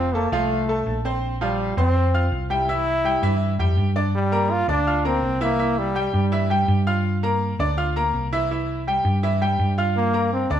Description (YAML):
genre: latin, salsa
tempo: 165 BPM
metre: 4/4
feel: straight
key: unclear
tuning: A4 = 440 Hz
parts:
  - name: bright trombone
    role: melody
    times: 0.0-6.5, 10.0-10.6 s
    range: G3 to F4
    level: -23 LUFS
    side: equal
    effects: none
  - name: bright upright piano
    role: accompaniment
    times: 0.0-10.6 s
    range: E3 to F6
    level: -24 LUFS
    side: right 1 dB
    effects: none
  - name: hollow-body short-scale fingered electric bass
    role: bass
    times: 0.0-10.6 s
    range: F1 to G2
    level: -23 LUFS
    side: equal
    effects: none
room: wet stone room reverb, RT60 1.1 s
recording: band playing live in one room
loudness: -19 LUFS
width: side -10 dB against mid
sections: 0.0-4.1 A section; 4.1-10.6 B section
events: none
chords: 0.0 F; 1.2 Bbsus2; 2.7 C; 4.1 Gm7; 5.6 C; 7.0 Gm7; 8.5 C; 10.0 Gm7